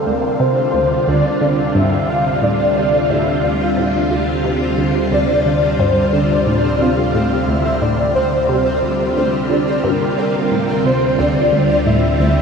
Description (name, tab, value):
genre	ambient, sequencer-driven space music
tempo	89 BPM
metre	4/4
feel	straight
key	D minor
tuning	A4 = 440 Hz
part	breathy flute-like synth lead	melody	0.0-12.4 s	Bb4 to F5	-18 LUFS	left 1 dB	phaser, ensemble chorus, ping-pong delay
part	phased string machine	sustained chords	0.0-12.4 s	C3 to F4	-18 LUFS	equal	ensemble chorus, phaser
part	resonant blip pluck	riff	0.0-12.4 s	D2 to D3	-20 LUFS	equal	phaser, ping-pong delay
part	round analog bass	bass	0.0-12.4 s	D2	-27 LUFS	equal	none
part	pulsing gated texture	texture	0.0-12.4 s	C4 to C5	-26 LUFS	right 1 dB	chorus, built-in reverb
room	wet huge ambient reverb, RT60 8.4 s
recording	dreamy mix soaked in reverb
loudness	-14 LUFS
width	side -6 dB against mid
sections	0.0-12.4 A section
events	fade-in on analog synth bass 0.0-12.4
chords	0.0 Dm7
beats	0.06 0.74 1.41 | 2.09 2.76 3.44 4.11 | 4.78 5.46 6.13 6.81 | 7.48 8.15 8.83 9.50 | 10.18 10.85 11.53 12.20